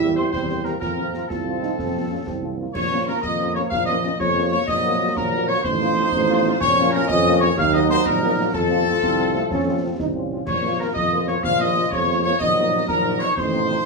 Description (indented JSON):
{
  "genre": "military-style march for wind band",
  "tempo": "124 BPM (dotted quarters)",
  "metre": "6/8",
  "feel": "straight",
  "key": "Bb minor",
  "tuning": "A4 = 438 Hz",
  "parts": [
    { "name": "mellow trumpet section", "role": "melody", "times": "0.0-13.9 s", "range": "A4 to F5", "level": "-25 LUFS", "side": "equal", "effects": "none" },
    { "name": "bright woodwind section", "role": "second line", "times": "0.0-13.9 s", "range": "A4 to F5", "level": "-26 LUFS", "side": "left 1 dB", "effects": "none" },
    { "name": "mellow wooden piccolo", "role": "second line", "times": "0.0-13.9 s", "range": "A5 to F6", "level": "-26 LUFS", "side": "left 1 dB", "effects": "none" },
    { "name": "warm euphonium", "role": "second line", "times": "0.0-2.7, 9.0-10.5 s", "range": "A3 to G4", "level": "-27 LUFS", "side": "right 6 dB", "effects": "none" },
    { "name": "dark French horn section", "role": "accompaniment", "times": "0.0-13.8 s", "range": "F3 to G4", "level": "-28 LUFS", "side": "left 8 dB", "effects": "none" },
    { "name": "dark trombone section", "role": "sustained chords", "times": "0.0-13.9 s", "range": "F3 to F4", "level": "-28 LUFS", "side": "right 2 dB", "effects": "none" },
    { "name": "mellow tuba", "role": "bass", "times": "0.0-13.8 s", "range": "A1 to F2", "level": "-24 LUFS", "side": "right 3 dB", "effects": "none" },
    { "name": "concert snare drum, concert bass drum and clash cymbals", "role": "drums", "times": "0.3-13.8 s", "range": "none", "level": "-30 LUFS", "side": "left 3 dB", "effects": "none" }
  ],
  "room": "moderate studio reverb, RT60 0.6 s",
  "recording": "small room ambience",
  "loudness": "-18 LUFS",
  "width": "side -2 dB against mid",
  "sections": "0.0-2.7 A section; 2.7-13.9 B section",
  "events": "none",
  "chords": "0.0 C7/E; 0.8 F; 2.7 Bbm; 4.7 Ebm/Bb; 5.6 F7/A; 6.6 Bbm; 7.6 Ebm; 8.5 F; 10.5 Bbm; 12.4 Ebm/Bb",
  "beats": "0.33 | 0.81 1.30 | 1.78 2.27 | 2.75 3.23 | 3.71 4.20 | 4.68 5.16 | 5.64 6.13 | 6.61 7.09 | 7.58 8.06 | 8.54 9.02 | 9.51 9.99 | 10.47 10.96 | 11.44 11.92 | 12.40 12.89 | 13.37 13.85"
}